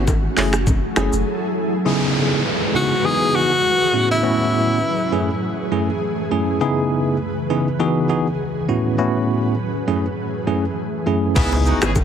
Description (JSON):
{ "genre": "afrobeats", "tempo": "101 BPM", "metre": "4/4", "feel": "swing 55% on 16ths", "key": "unclear", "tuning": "A4 = 440 Hz", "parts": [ { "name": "bell-like tine electric piano", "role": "accompaniment", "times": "0.0-11.9 s", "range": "F#2 to G#4", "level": "-20 LUFS", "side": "right 1 dB", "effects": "medium stereo tremolo" }, { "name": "ethereal airy pad", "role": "sustained chords", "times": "0.0-11.3 s", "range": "F#2 to A4", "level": "-24 LUFS", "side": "equal", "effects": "ensemble chorus, built-in reverb, tremolo, sidechain pumping" }, { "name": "warm sub bass", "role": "bass", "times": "0.0-1.2, 11.4-12.0 s", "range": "F#1 to C#2", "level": "-21 LUFS", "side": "equal", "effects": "none" }, { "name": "afro-pop drum kit", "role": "drums", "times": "0.1-1.3, 11.4-12.0 s", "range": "crash cymbal, finger snaps, handclaps, hi-hat, kick drum, rim click, shaker", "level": "-20 LUFS", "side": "equal", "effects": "none" }, { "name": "bongos and congas", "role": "percussion", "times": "0.1-1.1, 11.4-12.0 s", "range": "none", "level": "-26 LUFS", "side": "left 3 dB", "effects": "none" }, { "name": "downlifter and impact", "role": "sound effects", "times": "1.9-6.6, 11.4-12.0 s", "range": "none", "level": "-27 LUFS", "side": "equal", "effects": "none" }, { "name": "breathy tenor saxophone", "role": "melody", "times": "2.8-5.8 s", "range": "E4 to G#4", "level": "-19 LUFS", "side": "left 2 dB", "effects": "tape echo" }, { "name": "clear horn section", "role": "second line", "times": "11.4-11.9 s", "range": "C#3 to G#4", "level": "-24 LUFS", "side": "left 2 dB", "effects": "none" } ], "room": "light reverb, digital ambience", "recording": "heavily compressed radio sound, multiband compression", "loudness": "-17 LUFS", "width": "side -8 dB against mid", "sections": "0.0-1.9 A section; 1.9-11.4 B section", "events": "break 1.3-1.9; impact 11.4-12.0", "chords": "0.4 F#m9; 1.9 C#m7; 3.0 Emaj9; 3.9 A69; 5.1 F#m9; 6.6 C#m7; 7.8 Emaj9; 8.7 A69; 9.9 F#m9; 11.4 C#m7" }